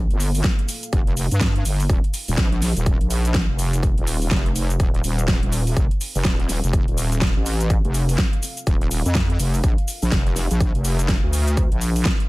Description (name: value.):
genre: bass house.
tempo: 124 BPM.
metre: 4/4.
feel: swing 60% on 16ths.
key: unclear.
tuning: A4 = 439 Hz.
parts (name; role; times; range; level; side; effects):
dark analog pad; sustained chords; 0.0-12.3 s; Bb3 to F5; -39 LUFS; right 1 dB; none.
wobble bass; bass; 0.0-12.0 s; Eb1 to G2; -21 LUFS; equal; chorus, tube saturation, sidechain pumping.
big-room dance drum kit; drums; 0.1-12.3 s; hi-hat, shaker, snare drum; -26 LUFS; equal; overdrive.
electronic kick drum; drums; 0.4-12.2 s; none; -20 LUFS; equal; overdrive.
room: digital ambience.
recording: none.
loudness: -18 LUFS.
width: side -21 dB against mid.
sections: 0.0-12.3 A section.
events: none.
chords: 0.0 Gmadd9; 1.9 Ebsus2; 5.8 F; 9.6 Bb.